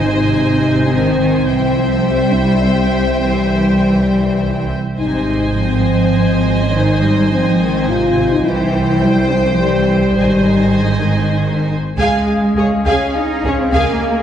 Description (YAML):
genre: cinematic, epic orchestral film score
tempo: 103 BPM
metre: 3/4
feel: straight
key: Ab major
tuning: A4 = 438 Hz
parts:
  - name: clear symphonic violin section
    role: melody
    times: 0.0-14.0 s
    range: Db5 to Ab5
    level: -26 LUFS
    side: left 2 dB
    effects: none
  - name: rich symphonic violin section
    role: second line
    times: 0.0-14.0 s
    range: Ab4 to F5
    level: -25 LUFS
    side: equal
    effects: none
  - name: clear symphonic viola section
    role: accompaniment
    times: 0.0-14.0 s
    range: Ab4 to C5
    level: -24 LUFS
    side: equal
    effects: none
  - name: dark French horn section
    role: sustained chords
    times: 0.0-14.2 s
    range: G3 to F5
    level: -17 LUFS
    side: left 2 dB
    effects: none
  - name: rich symphonic cello section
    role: bass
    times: 0.0-14.2 s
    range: C3 to Eb4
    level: -18 LUFS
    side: right 1 dB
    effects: none
  - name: rich symphonic double bass section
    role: bass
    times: 0.0-13.8 s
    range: Ab1 to Db2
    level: -19 LUFS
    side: right 2 dB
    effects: none
  - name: clear woodwind section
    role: sustained chords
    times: 12.0-14.2 s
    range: Ab3 to F5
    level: -24 LUFS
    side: left 1 dB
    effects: none
room: wet scoring stage reverb, RT60 1.8 s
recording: heard from further back in the room, nothing above 10.5 kHz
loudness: -12 LUFS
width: side -9 dB against mid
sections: 0.0-12.0 A section; 12.0-14.2 B section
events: none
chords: 0.0 Ab; 1.5 C; 5.0 Ab; 8.4 C; 10.2 Ab; 12.0 Db